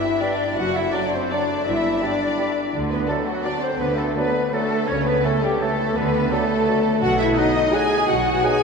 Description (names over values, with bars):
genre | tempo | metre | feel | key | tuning
classical | 168 BPM | 3/4 | uneven beats, rubato | unclear | A4 = 440 Hz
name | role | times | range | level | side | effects
warm chamber violin section | melody | 0.0-8.6 s | F#4 to G#5 | -28 LUFS | left 1 dB | none
silver concert flute | second line | 0.0-8.6 s | F#4 to G#5 | -28 LUFS | left 1 dB | none
warm symphonic violin section | second line | 0.0-8.6 s | F#4 to G#5 | -30 LUFS | left 2 dB | none
rich chamber viola section | accompaniment | 0.0-8.6 s | F#3 to G#4 | -27 LUFS | right 3 dB | none
mellow French horn section | sustained chords | 0.0-8.6 s | F#3 to G#4 | -24 LUFS | left 2 dB | none
concert harp | arpeggios | 0.0-8.6 s | F#2 to D5 | -29 LUFS | left 5 dB | none
mellow clarinet | second line | 0.2-8.6 s | B4 to D#5 | -34 LUFS | equal | none
warm oboe | second line | 0.2-8.6 s | F#5 to B5 | -34 LUFS | right 4 dB | none
warm bassoon | accompaniment | 0.2-8.6 s | E3 to G3 | -32 LUFS | right 2 dB | none
rich chamber cello section | bass | 0.6-8.4 s | F#2 to D3 | -30 LUFS | right 3 dB | none
warm chamber double bass section | bass | 0.6-8.4 s | F#1 to D2 | -32 LUFS | right 3 dB | none
timpani | percussion | 7.0-7.5 s | B2 | -34 LUFS | equal | none
room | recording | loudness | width
wet cathedral reverb, RT60 4.5 s | minimal, uncompressed stereo recording | -18 LUFS | side -5 dB against mid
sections
0.0-8.6 A section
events
none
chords
0.0 G; 0.6 D/F#; 1.7 G; 2.7 D; 4.9 A/C#; 6.0 D; 7.0 B